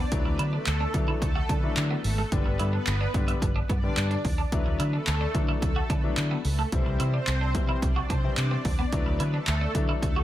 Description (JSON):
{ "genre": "dance-pop", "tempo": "109 BPM", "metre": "4/4", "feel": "straight", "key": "D mixolydian", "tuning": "A4 = 440 Hz", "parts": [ { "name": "twelve-string electric guitar", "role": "riff", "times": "0.0-10.2 s", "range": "A3 to F#4", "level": "-35 LUFS", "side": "right 2 dB", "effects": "analog chorus" }, { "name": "vintage muted fingered electric bass", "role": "bass", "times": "0.0-10.2 s", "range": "G1 to D3", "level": "-28 LUFS", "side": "equal", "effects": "sidechain pumping" }, { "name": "supersaw pad", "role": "melody", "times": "0.1-10.2 s", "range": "A3 to D5", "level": "-34 LUFS", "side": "equal", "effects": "ensemble chorus, sidechain pumping, analog delay" }, { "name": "warm grand piano", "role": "accompaniment", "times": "0.1-10.1 s", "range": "D3 to E4", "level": "-34 LUFS", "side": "left 6 dB", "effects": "sidechain pumping" }, { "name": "punchy analog drum machine", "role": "drums", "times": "0.1-10.2 s", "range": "handclaps, hi-hat, kick drum", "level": "-28 LUFS", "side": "equal", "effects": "none" } ], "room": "little or no reverb", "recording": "none", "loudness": "-24 LUFS", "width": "side -13 dB against mid", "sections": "0.0-10.2 A section", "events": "none", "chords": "0.1 Dadd9; 2.3 G; 4.5 Dadd9; 6.7 C; 8.9 Dadd9", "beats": "| 0.12 0.67 1.22 1.77 | 2.32 2.87 3.42 3.97 | 4.52 5.07 5.62 6.17 | 6.72 7.27 7.82 8.38 | 8.93 9.48 10.03" }